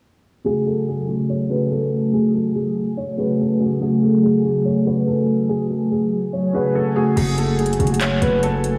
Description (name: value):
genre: hip hop, trap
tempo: 143 BPM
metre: 4/4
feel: half-time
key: F# minor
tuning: A4 = 440 Hz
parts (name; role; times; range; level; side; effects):
- dark grand piano; accompaniment; 0.4-8.8 s; C#3 to B4; -24 LUFS; equal; none
- felt-muted upright piano; melody; 0.5-8.8 s; G#4 to C#5; -27 LUFS; equal; analog chorus, analog delay
- glassy FM pad; sustained chords; 0.8-8.8 s; F#3 to G#5; -23 LUFS; equal; ensemble chorus, built-in reverb
- distorted 808-style bass; bass; 7.2-8.8 s; F#1; -24 LUFS; equal; distortion
- trap drum kit; drums; 7.2-8.7 s; crash cymbal, handclaps, hi-hat; -30 LUFS; equal; none
room: wet lush hall reverb, RT60 1.9 s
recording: dreamy mix soaked in reverb, vinyl crackle, low-pass filter, small room ambience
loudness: -19 LUFS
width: mono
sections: 0.5-7.2 A section; 7.2-8.8 B section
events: filter sweep 0.5-7.2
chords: 0.5 F#madd9